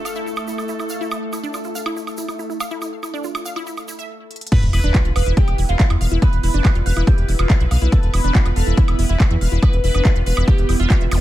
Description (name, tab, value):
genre	psychedelic trance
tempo	141 BPM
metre	4/4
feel	straight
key	unclear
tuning	A4 = 440 Hz
part	evolving wavetable pad	sustained chords	0.0-11.2 s	A3 to B4	-29 LUFS	equal	chorus, built-in reverb, sidechain pumping
part	wide unison pluck	riff	0.1-11.2 s	D4 to F5	-28 LUFS	moving between left 3 dB and right 5 dB	auto-pan, sidechain pumping, ping-pong delay
part	techno drum kit	drums	0.1-11.2 s	crash cymbal, handclaps, hi-hat, woodblock	-28 LUFS	right 2 dB	overdrive, low-pass filter on hats, studio reverb, low-pass filter on perc, low-pass filter on snare, low-pass filter on cymbals
part	egg shaker	percussion	0.1-4.1 s	none	-36 LUFS	right 4 dB	none
part	overdriven synth lead	melody	4.5-10.9 s	E4 to B4	-27 LUFS	right 1 dB	phaser, sidechain pumping, ping-pong delay
part	electronic kick drum	drums	4.5-11.0 s	none	-15 LUFS	equal	overdrive, studio reverb
part	sub drop and zap	sound effects	4.5-6.2, 11.1-11.2 s	none	-24 LUFS	equal	none
part	round analog bass	bass	4.6-11.2 s	E1 to E2	-17 LUFS	equal	none
room	little or no reverb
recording	none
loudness	-16 LUFS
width	side -14 dB against mid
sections	0.0-4.5 A section; 4.5-11.2 B section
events	filter sweep on drum 0.0-4.5; stop 4.1-4.5; drum fill 4.3; drop 4.5-11.2; impact 4.5-6.2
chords	0.0 A5; 4.5 E5